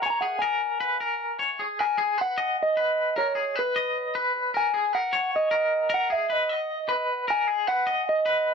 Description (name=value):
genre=rock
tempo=306 BPM (eighths)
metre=7/8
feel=straight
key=G# minor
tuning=A4 = 441 Hz
part: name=electric guitar through a small old amp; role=melody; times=0.0-8.5 s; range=B4 to A#5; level=-25 LUFS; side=equal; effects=tape echo
part: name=twangy electric guitar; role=arpeggios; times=0.0-8.5 s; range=G#4 to D#5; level=-26 LUFS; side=left 1 dB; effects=tremolo
room=light reverb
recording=dry, close 1970s-style studio recording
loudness=-23 LUFS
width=side -6 dB against mid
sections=0.0-1.8 A section; 1.8-8.5 B section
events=none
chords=0.0 G#sus4; 1.8 G#m; 4.5 D#m7; 5.9 G#m9